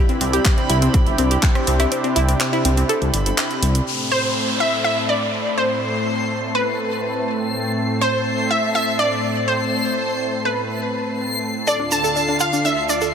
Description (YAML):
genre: progressive house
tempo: 123 BPM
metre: 4/4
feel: straight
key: A minor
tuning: A4 = 440 Hz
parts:
  - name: lush unison pad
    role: sustained chords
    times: 0.0-13.1 s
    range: D2 to A5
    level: -24 LUFS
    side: equal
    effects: chorus, sidechain pumping
  - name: analog pluck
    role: arpeggios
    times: 0.0-3.8, 11.7-13.1 s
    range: C4 to A4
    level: -22 LUFS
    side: equal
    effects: chorus, phaser, sidechain pumping, digital delay
  - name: backwards swelling texture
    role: texture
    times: 0.0-13.1 s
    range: B5 to C7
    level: -29 LUFS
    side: equal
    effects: built-in reverb, sidechain pumping
  - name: house drum kit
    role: drums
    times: 0.1-3.8 s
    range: handclaps, hi-hat, rim click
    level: -24 LUFS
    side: right 1 dB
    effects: none
  - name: dark detuned saw bass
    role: bass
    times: 0.2-3.8 s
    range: G1 to C2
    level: -19 LUFS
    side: equal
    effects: sidechain pumping
  - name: electronic kick drum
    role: drums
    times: 0.5-1.5 s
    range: none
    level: -16 LUFS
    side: equal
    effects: none
  - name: downlifter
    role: sound effects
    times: 3.9-7.8 s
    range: none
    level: -27 LUFS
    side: equal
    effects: none
  - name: wide unison pluck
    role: melody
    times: 4.1-13.1 s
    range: B4 to A5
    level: -22 LUFS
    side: equal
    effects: sidechain pumping, digital delay
  - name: dark studio violin section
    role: second line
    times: 4.1-13.1 s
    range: B4 to A5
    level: -26 LUFS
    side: equal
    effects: sidechain pumping, digital delay
  - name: egg shaker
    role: percussion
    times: 11.7-13.1 s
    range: none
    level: -26 LUFS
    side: right 3 dB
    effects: none
room: moderate huge ambient reverb, RT60 4.1 s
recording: none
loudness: -17 LUFS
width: side -7 dB against mid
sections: 0.0-3.9 A section; 3.9-13.1 B section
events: kick drops out 1.9-3.9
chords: 0.0 Cadd9; 3.9 Amadd9; 11.7 Dm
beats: 0.45 0.94 1.43 | 1.92 2.40 2.89 3.38 | 3.87 4.36 4.84 5.33 | 5.82 6.31 6.79 7.28 | 7.77 8.26 8.75 9.23 | 9.72 10.21 10.70 11.19 | 11.67 12.16 12.65 13.14